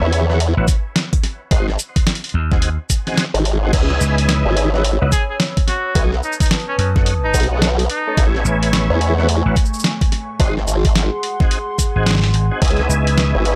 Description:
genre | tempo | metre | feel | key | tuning
glitch hop | 108 BPM | 4/4 | swing 62% on 16ths | C# minor | A4 = 440 Hz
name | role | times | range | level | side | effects
tonewheel organ | stabs | 0.0-13.6 s | A3 to B#4 | -26 LUFS | equal | chorus vibrato, slow rotary speaker, vintage 12-bit sampler grit, sidechain pumping, dub echo
formant-sweep wobble bass | bass | 0.0-13.6 s | G#1 to E2 | -19 LUFS | equal | chorus
boom bap sampler-style drum kit | drums | 0.1-13.6 s | crash cymbal, hi-hat, shaker, snare drum | -23 LUFS | equal | none
vintage slap bass | bass | 0.6-13.3 s | G#1 to F#2 | -19 LUFS | equal | none
electronic kick drum | drums | 0.7-12.8 s | none | -19 LUFS | equal | overdrive
dark analog pad | sustained chords | 4.2-13.6 s | A3 to E6 | -29 LUFS | equal | chorus, sidechain pumping
clear trumpet | melody | 5.1-8.2 s | C#4 to G#4 | -27 LUFS | equal | dub echo
room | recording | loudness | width
light reverb | none | -17 LUFS | mono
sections
0.0-13.6 A section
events
none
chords
0.0 Amaj7 (rootless); 1.5 G#7; 3.7 C#m7; 6.0 B7; 8.2 Amaj7; 10.4 G#7; 12.6 C#m7

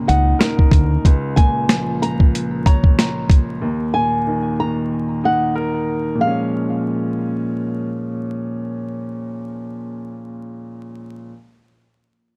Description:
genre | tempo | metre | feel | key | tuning
hip hop, boom-bap hip-hop | 93 BPM | 4/4 | swing 55% on 16ths | Db major | A4 = 440 Hz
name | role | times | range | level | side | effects
flamenco guitar | melody | 0.0-8.1 s | F5 to Bb5 | -24 LUFS | equal | high-pass filter, low-pass filter, analog delay
dark baby grand piano | accompaniment | 0.0-11.3 s | Db2 to Bb5 | -24 LUFS | equal | cassette tape, high-pass filter, low-pass filter
deep dub fingered electric bass | bass | 0.1-1.0 s | Db2 to D2 | -19 LUFS | equal | none
boom bap sampler-style drum kit | drums | 0.1-3.5 s | hi-hat, kick drum, snare drum | -15 LUFS | equal | none
room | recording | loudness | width
little or no reverb | dark, warm production, vinyl crackle | -18 LUFS | mono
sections
0.0-6.2 A section; 6.2-8.8 B section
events
none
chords
0.0 Eb5; 1.0 Db6; 3.6 Eb5; 6.2 Db6

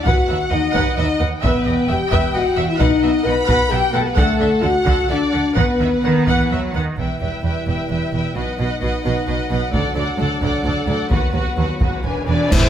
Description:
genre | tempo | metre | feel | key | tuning
cinematic, epic orchestral film score | 131 BPM | 3/4 | straight | E harmonic minor | A4 = 437 Hz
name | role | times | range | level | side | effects
warm symphonic violin section | melody | 0.0-12.7 s | D5 to G#5 | -29 LUFS | left 2 dB | none
rich studio violin section | second line | 0.0-12.7 s | A4 to B5 | -25 LUFS | left 2 dB | none
rich symphonic viola section | accompaniment | 0.0-12.7 s | C4 to F#5 | -25 LUFS | right 2 dB | none
mellow French horn section | sustained chords | 0.0-12.7 s | F#3 to B4 | -21 LUFS | left 3 dB | none
dark symphonic double bass section | bass | 0.1-12.6 s | E1 to D#2 | -25 LUFS | right 3 dB | none
rich symphonic cello section | bass | 0.1-12.6 s | D2 to F#3 | -23 LUFS | right 2 dB | none
taiko ensemble | drums | 0.1-12.7 s | none | -22 LUFS | equal | none
cymbal swell, clash cymbals and concert bass drum | percussion | 9.7-12.7 s | none | -22 LUFS | equal | none
warm woodwind section | sustained chords | 12.5-12.7 s | E4 to C5 | -22 LUFS | right 2 dB | none
room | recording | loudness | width
moderate concert hall reverb, RT60 1.9 s | none | -16 LUFS | side -9 dB against mid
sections
0.0-7.0 A section; 7.0-12.5 B section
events
band accent 12.5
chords
0.1 B/D#; 1.4 Em; 2.8 B; 4.2 D; 5.6 B/D#; 7.0 Em; 8.4 B; 9.7 D; 11.1 B/D#; 12.0 E7

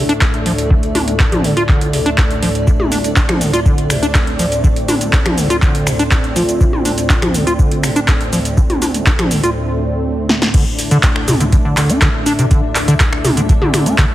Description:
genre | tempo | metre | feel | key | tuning
acid house | 122 BPM | 4/4 | straight | unclear | A4 = 439 Hz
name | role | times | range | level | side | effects
warm analog pad | sustained chords | 0.0-14.1 s | D2 to E5 | -21 LUFS | equal | chorus, sidechain pumping
acid bass, square | riff | 0.0-14.1 s | C3 to F4 | -17 LUFS | equal | tube saturation, wide subtle chorus, cassette tape, sidechain pumping
granular cloud pad | texture | 0.0-14.1 s | D4 to E5 | -25 LUFS | left 1 dB | built-in reverb, sidechain pumping
electro analog drum machine | drums | 0.1-14.1 s | crash cymbal, finger snaps, handclaps, hi-hat, shaker, snare drum, toms | -17 LUFS | equal | overdrive
electronic kick drum | drums | 0.2-14.1 s | none | -14 LUFS | equal | overdrive
marimba with soft mallets | melody | 6.4-6.7 s | F4 | -24 LUFS | equal | tape echo
room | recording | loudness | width
light reverb, digital ambience | heavily compressed radio sound, multiband compression | -12 LUFS | side -14 dB against mid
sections
0.0-10.5 A section; 10.5-14.1 B section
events
break 9.6-10.5; drum fill 10.3; drop 10.5-14.1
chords
0.0 D5

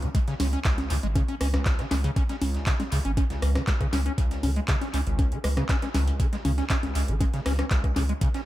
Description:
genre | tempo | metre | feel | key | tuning
acid house | 119 BPM | 4/4 | straight | C# minor | A4 = 438 Hz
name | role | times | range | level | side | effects
acid bass, square | riff | 0.0-8.4 s | C#2 to C#4 | -30 LUFS | equal | overdrive, analog chorus, dub echo
saturated sub bass | bass | 0.0-8.1 s | G#1 to C#2 | -26 LUFS | equal | tube saturation, sidechain pumping
booming analog drum machine | drums | 0.0-8.4 s | congas, handclaps, hi-hat, rim click, snare drum | -31 LUFS | equal | overdrive, analog delay
dusty soul sampler-style drum kit | drums | 0.1-8.5 s | hi-hat, snare drum | -42 LUFS | equal | overdrive, sidechain pumping on hats, high-pass filter on hats, high-pass filter on snare, high-pass filter on room, analog delay
electronic kick drum | drums | 0.1-8.3 s | none | -24 LUFS | equal | none
room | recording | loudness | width
little or no reverb | echo-heavy mix | -23 LUFS | side -15 dB against mid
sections
0.0-8.5 A section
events
none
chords
0.0 C#5

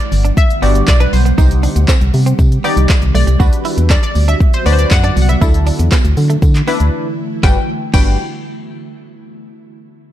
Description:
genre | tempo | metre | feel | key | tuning
dance-pop | 119 BPM | 4/4 | straight | G major | A4 = 440 Hz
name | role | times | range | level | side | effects
analog pluck | melody | 0.0-8.2 s | B4 to G5 | -21 LUFS | left 2 dB | chorus, ping-pong delay
ethereal airy pad | sustained chords | 0.0-7.7 s | D3 to F#5 | -23 LUFS | right 1 dB | ensemble chorus, built-in reverb, sidechain pumping
direct-recorded clean electric guitar | riff | 0.0-8.1 s | G3 to F#4 | -25 LUFS | right 7 dB | lush chorus
deep house drum kit | drums | 0.0-8.1 s | crash cymbal, handclaps, hi-hat, kick drum, shaker, snare drum | -13 LUFS | equal | none
organ-like FM bass | bass | 0.1-8.2 s | G1 to D3 | -12 LUFS | equal | sidechain pumping
tambourine | percussion | 0.1-8.2 s | none | -33 LUFS | left 9 dB | none
funky polysynth comp | accompaniment | 0.6-8.2 s | G3 to D5 | -21 LUFS | left 2 dB | chorus, sidechain pumping
room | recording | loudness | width
little or no reverb | dark, warm production | -10 LUFS | side -12 dB against mid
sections
0.0-7.4 A section; 7.4-9.4 B section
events
break 6.9-7.4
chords
0.0 Gmaj7; 1.4 Cm; 3.4 Bm/D; 5.4 Dsus2; 7.4 Gmaj7

